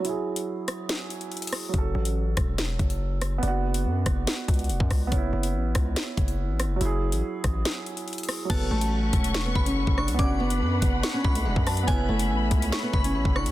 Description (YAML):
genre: hip hop, drill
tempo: 142 BPM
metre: 4/4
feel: half-time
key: F# minor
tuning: A4 = 440 Hz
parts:
  - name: dark grand piano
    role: accompaniment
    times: 0.0-13.5 s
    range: F#3 to A4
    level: -32 LUFS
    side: right 4 dB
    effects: low-pass filter
  - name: drill drum kit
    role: drums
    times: 0.0-13.5 s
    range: crash cymbal, hi-hat, kick drum, rim click, snare drum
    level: -27 LUFS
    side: equal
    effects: none
  - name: distorted 808-style bass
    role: bass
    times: 1.7-13.5 s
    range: E1 to F#2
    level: -27 LUFS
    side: equal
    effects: distortion
  - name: nylon-string guitar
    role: melody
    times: 8.5-13.5 s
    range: F#3 to D4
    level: -29 LUFS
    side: equal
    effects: digital delay
  - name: glassy synth bell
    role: second line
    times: 8.5-13.5 s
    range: G#5 to D6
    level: -33 LUFS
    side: left 1 dB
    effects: chorus, digital delay
  - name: dark symphonic string section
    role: sustained chords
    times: 8.5-13.5 s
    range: C#4 to C#6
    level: -33 LUFS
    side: left 2 dB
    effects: none
room: small room ambience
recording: dense, heavily limited modern master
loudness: -23 LUFS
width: side -15 dB against mid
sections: 0.0-8.5 A section; 8.5-13.5 B section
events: break 0.0-1.7, 7.7-8.5; filter sweep on grand piano 0.0-1.7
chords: 0.0 Eadd9/F#; 1.7 F#m; 3.4 Bm/F#; 5.1 C#m7/F#; 6.8 Eadd9/F#; 8.5 F#m; 10.2 Bm/F#; 11.9 C#m7/F#